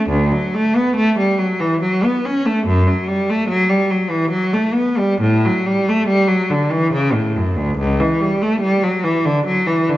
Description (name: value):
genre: classical, baroque-style suite movement for unaccompanied cello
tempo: 70 BPM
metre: 3/4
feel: rubato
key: unclear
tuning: A4 = 440 Hz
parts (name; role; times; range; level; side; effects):
- clear cello; solo; 0.0-10.0 s; C#2 to C#4; -15 LUFS; equal; none
room: wet recital hall reverb, RT60 1.6 s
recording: dark, warm production, nothing above 7.6 kHz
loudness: -15 LUFS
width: side -15 dB against mid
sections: 0.0-10.0 A section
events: none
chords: none